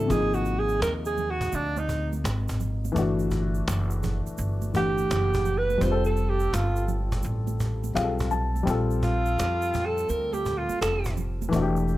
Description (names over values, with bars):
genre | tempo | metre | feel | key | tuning
hip hop, jazz-hop | 84 BPM | 4/4 | swing 66% on 16ths | unclear | A4 = 439 Hz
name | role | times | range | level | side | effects
breathy alto saxophone | melody | 0.0-11.1 s | D4 to C5 | -27 LUFS | right 2 dB | slapback echo
dark upright piano | accompaniment | 0.0-12.0 s | B#2 to A5 | -29 LUFS | left 4 dB | plate reverb
upright bass | bass | 0.0-12.0 s | E1 to F2 | -28 LUFS | equal | none
cajon | drums | 0.1-12.0 s | none | -33 LUFS | equal | none
egg shaker and congas | percussion | 0.1-12.0 s | none | -40 LUFS | right 9 dB | none
room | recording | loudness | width
light reverb | none | -24 LUFS | side -16 dB against mid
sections
0.0-12.0 A section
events
alto saxophone solo 0.0-12.0; upright piano fill 7.6-8.7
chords
0.1 G#add9; 3.0 G5; 5.8 F; 8.7 Bbmaj7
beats
| 0.10 0.81 1.53 2.24 | 2.96 3.67 4.38 5.10 | 5.81 6.53 7.24 7.96 | 8.67 9.38 10.10 10.81 | 11.53